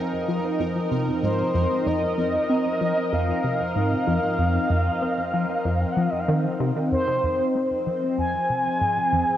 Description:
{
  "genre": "ambient, sequencer-driven space music",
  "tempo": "95 BPM",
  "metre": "4/4",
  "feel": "straight",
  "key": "F minor",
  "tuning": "A4 = 440 Hz",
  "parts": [
    { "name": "phased analog pad", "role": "sustained chords", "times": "0.0-9.4 s", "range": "F3 to Eb5", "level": "-26 LUFS", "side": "equal", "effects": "phaser, chorus" },
    { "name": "tight sequenced synth", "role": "riff", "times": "0.0-9.2 s", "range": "F2 to C4", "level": "-26 LUFS", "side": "equal", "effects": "chorus, phaser, analog delay" },
    { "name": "pulsing gated texture", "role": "texture", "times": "0.0-6.9 s", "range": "Eb4 to Bb4", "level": "-36 LUFS", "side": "left 2 dB", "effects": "chorus, built-in reverb" },
    { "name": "expressive synth lead", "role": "melody", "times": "1.2-9.4 s", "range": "C5 to Ab5", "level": "-25 LUFS", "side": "equal", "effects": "chorus, analog delay" }
  ],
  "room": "wet lush hall reverb, RT60 2.7 s",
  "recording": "worn, warbling old tape, cassette tape, warbly pitch drift",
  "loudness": "-21 LUFS",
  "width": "side -11 dB against mid",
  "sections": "0.0-6.9 A section; 6.9-9.4 B section",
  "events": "filter sweep on synth arpeggio sound 0.0-6.9, 6.9-9.4",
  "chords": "0.0 Fm7"
}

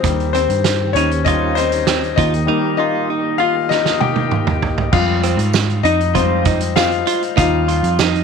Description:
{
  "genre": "piano-driven pop",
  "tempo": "98 BPM",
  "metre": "4/4",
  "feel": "straight",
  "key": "F minor",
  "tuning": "A4 = 440 Hz",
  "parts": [
    { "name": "bright concert grand piano", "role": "accompaniment", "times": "0.0-8.2 s", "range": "Eb3 to G5", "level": "-18 LUFS", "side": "left 11 dB", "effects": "none" },
    { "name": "tonewheel organ", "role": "sustained chords", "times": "0.0-4.9 s", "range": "Eb3 to G4", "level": "-27 LUFS", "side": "right 3 dB", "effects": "chorus vibrato, slow rotary speaker" },
    { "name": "vintage muted picked electric bass", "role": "bass", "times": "0.0-8.2 s", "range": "Eb2 to Ab2", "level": "-19 LUFS", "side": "right 2 dB", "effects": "none" },
    { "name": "loose indie drum kit", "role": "drums", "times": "0.0-8.2 s", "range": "crash cymbal, hi-hat, kick drum, snare drum, toms", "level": "-20 LUFS", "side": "right 7 dB", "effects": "none" },
    { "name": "direct-recorded clean electric guitar", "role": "riff", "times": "0.3-8.2 s", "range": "C4 to F4", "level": "-21 LUFS", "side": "right 14 dB", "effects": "phaser" },
    { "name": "tambourine", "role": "percussion", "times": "5.5-8.1 s", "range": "none", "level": "-30 LUFS", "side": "right 17 dB", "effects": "none" }
  ],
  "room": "light reverb, studio reverb",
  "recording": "1960s-style stereo with parts hard left and right",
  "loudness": "-14 LUFS",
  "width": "side -6 dB against mid",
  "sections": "0.0-4.9 A section; 4.9-8.2 B section",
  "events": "grand piano solo 0.0-4.9, 4.9-8.2; drum fill 3.7-4.9",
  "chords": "0.0 Cm/Eb; 2.2 Eb; 4.9 Fmadd9; 7.4 Ebadd9"
}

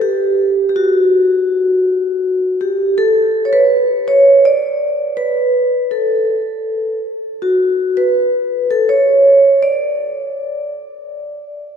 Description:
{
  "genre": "persian",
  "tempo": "81 BPM",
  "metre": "3/4",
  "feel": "straight",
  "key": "D dastgah mahur",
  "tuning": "A4 = 440 Hz",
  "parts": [
    { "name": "vibraphone with medium mallets", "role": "solo", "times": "0.0-11.4 s", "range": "F#4 to D5", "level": "-12 LUFS", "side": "equal", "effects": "none" }
  ],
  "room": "wet church reverb, RT60 3.7 s",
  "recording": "recorded in a church or concert hall",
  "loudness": "-12 LUFS",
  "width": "side -7 dB against mid",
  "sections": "0.0-11.8 A section",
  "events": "none",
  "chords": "none"
}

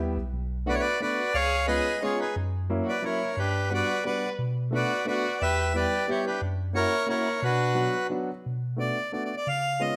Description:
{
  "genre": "musette waltz",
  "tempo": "177 BPM",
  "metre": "3/4",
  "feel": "straight",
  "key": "B minor",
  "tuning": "A4 = 440 Hz",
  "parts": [
    { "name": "warm upright piano", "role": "accompaniment", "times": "0.0-10.0 s", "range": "F#3 to G4", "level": "-34 LUFS", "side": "equal", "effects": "none" },
    { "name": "mellow tine electric piano", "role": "bass", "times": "0.0-9.9 s", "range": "B1 to C#3", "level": "-32 LUFS", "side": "equal", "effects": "none" },
    { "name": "accordion", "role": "melody", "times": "0.7-10.0 s", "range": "F#4 to F#5", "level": "-29 LUFS", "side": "equal", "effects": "none" },
    { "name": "warm violin", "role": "second line", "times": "0.7-8.1 s", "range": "D4 to B4", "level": "-37 LUFS", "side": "equal", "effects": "none" }
  ],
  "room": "moderate recital hall reverb, RT60 1.4 s",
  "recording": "none",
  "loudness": "-27 LUFS",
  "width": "mono",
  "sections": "0.3-8.4 A section; 8.4-10.0 A section",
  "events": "none",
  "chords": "0.3 Bm7; 1.4 C#7; 2.4 F#7; 3.4 Gmaj7; 4.4 Bm7; 5.4 Em; 6.4 F#7; 7.4 Bm; 8.4 Bm7"
}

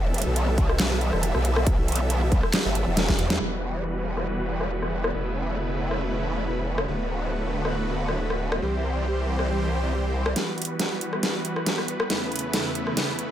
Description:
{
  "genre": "heavy wobble dubstep",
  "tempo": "138 BPM",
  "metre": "4/4",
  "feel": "swing 53% on 16ths, half-time",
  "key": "E minor",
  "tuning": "A4 = 440 Hz",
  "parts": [
    { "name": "supersaw chords", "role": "sustained chords", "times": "0.0-13.3 s", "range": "E2 to E5", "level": "-29 LUFS", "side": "equal", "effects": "sidechain pumping, low-pass filter" },
    { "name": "growl bass", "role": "bass", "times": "0.0-10.3 s", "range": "D1 to E2", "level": "-26 LUFS", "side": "equal", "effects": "chorus, overdrive" },
    { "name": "dubstep drum kit", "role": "drums", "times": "0.1-13.3 s", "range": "crash cymbal, handclaps, hi-hat, rim click, snare drum", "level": "-26 LUFS", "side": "equal", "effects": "high-pass filter on hats, low-pass filter on hats, high-pass filter on snare, low-pass filter on snare, high-pass filter on cymbals, low-pass filter on cymbals, high-pass filter on room, low-pass filter on room" },
    { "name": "electronic kick drum", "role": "drums", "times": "0.6-3.2 s", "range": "none", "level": "-23 LUFS", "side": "equal", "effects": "none" }
  ],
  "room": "light reverb, digital ambience",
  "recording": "none",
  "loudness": "-23 LUFS",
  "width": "side -11 dB against mid",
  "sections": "0.0-3.4 A section; 3.4-10.4 B section; 10.4-13.3 C section",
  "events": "drop 0.0-3.4; drum fill 3.0-3.4, 10.4-13.3; band accent 3.3; filter sweep on supersaw synth 3.4-10.4, 10.4-13.3; build-up 10.4-13.3",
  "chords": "0.0 Em; 3.4 Emadd9; 5.1 Aadd9/E; 6.9 D6; 8.6 C; 10.4 Emadd9; 12.1 Aadd9/E"
}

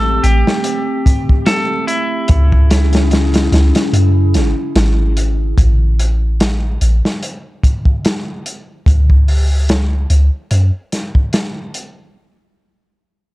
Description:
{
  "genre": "trip hop",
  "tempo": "73 BPM",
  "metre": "4/4",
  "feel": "swing 56% on 16ths",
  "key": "unclear",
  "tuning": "A4 = 445 Hz",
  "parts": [
    { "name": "clean electric guitar", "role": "melody", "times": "0.0-5.1 s", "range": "E4 to A4", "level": "-20 LUFS", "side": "equal", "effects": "tape echo" },
    { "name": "warbly tape-like pad", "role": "sustained chords", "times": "0.0-5.5 s", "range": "C#3 to G#4", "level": "-20 LUFS", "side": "equal", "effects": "chorus, built-in reverb" },
    { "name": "soft 808-style bass", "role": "bass", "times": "0.0-10.7 s", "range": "G#1 to F#2", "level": "-12 LUFS", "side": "equal", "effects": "none" },
    { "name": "crunchy breakbeat drum kit", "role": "drums", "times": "0.2-12.0 s", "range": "hi-hat, kick drum, snare drum", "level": "-16 LUFS", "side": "equal", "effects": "none" }
  ],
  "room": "small room reverb",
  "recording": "dark, warm production",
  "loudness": "-12 LUFS",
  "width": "side -18 dB against mid",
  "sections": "0.0-5.6 A section; 5.6-13.3 B section",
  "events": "break 3.9-5.6",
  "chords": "0.0 Am7; 2.3 C#m; 5.6 N.C."
}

